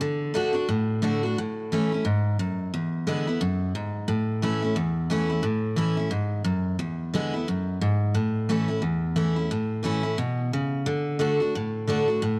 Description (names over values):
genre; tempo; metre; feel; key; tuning
rock; 177 BPM; 4/4; swing 59% on 8ths; A major; A4 = 439 Hz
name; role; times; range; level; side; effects
picked steel-string acoustic guitar; solo; 0.0-12.4 s; E2 to F#4; -26 LUFS; equal; none
room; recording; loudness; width
light reverb, small room ambience; none; -26 LUFS; mono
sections
0.0-9.5 A section; 9.5-12.4 A section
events
none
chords
0.0 D; 1.4 A; 2.7 E7; 4.1 A; 6.8 E7; 8.2 A; 10.9 D